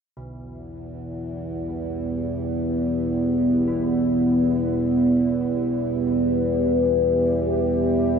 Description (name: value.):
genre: dark ambient drone.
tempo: free time.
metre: none.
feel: none.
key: E minor.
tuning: A4 = 441 Hz.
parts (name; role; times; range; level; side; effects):
dark analog pad; sustained chords; 1.7-8.2 s; B3 to E5; -22 LUFS; right 1 dB; chorus.
carillon bells; arpeggios; 0.2-8.2 s; B2 to B3; -42 LUFS; right 1 dB; diffuse ambient delay.
overtone-sweeping drone; drone; 0.6-8.2 s; E2 to E3; -24 LUFS; left 1 dB; chorus, built-in reverb.
room: wet huge ambient reverb, RT60 7.5 s.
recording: none.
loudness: -20 LUFS.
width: side -6 dB against mid.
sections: 0.2-8.2 A section.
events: fade-in on church bells 0.2-8.2.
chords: 0.2 Em.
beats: free time.